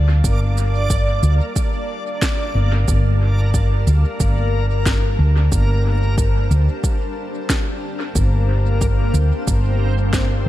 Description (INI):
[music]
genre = ambient dub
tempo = 91 BPM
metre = 4/4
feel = swing 56% on 16ths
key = G minor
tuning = A4 = 440 Hz
[part]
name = granular cloud pad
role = sustained chords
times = 0.0-10.5 s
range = G3 to A5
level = -31 LUFS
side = left 1 dB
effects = built-in reverb
[part]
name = hollow-body short-scale fingered electric bass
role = bass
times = 0.0-10.5 s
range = G1 to D2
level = -16 LUFS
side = equal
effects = none
[part]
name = backwards swelling texture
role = texture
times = 0.0-10.5 s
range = Bb3 to D5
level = -26 LUFS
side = left 1 dB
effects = built-in reverb
[part]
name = electronic kick drum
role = drums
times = 0.2-10.3 s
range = none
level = -20 LUFS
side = equal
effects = overdrive
[part]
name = electronic shaker and snare drum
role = drums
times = 0.2-10.3 s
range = none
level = -27 LUFS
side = right 1 dB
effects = dub echo
[sound]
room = little or no reverb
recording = none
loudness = -16 LUFS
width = side -14 dB against mid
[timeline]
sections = 0.0-10.5 A section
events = fade-in on ambient pad 0.0-10.5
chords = 0.0 Gm7